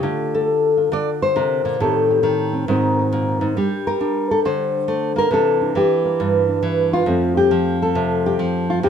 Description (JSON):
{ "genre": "solo jazz", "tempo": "136 BPM", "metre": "4/4", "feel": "swing 66% on 8ths", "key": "F major", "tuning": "A4 = 444 Hz", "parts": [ { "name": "nylon-string guitar", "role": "solo", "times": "0.0-8.9 s", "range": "F2 to D5", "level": "-16 LUFS", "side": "equal", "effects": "none" } ], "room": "light reverb", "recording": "minimal, uncompressed stereo recording", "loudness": "-16 LUFS", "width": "side -8 dB against mid", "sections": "0.0-8.9 A section", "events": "none", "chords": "0.0 Dm7; 1.8 Am7b5; 2.7 Ab9; 3.6 Gmadd9; 5.3 C9; 7.1 Fadd9", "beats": "| 0.03 0.47 0.91 1.35 | 1.79 2.23 2.67 3.11 | 3.55 3.99 4.43 4.87 | 5.31 5.75 6.19 6.63 | 7.07 7.51 7.96 8.40 | 8.84" }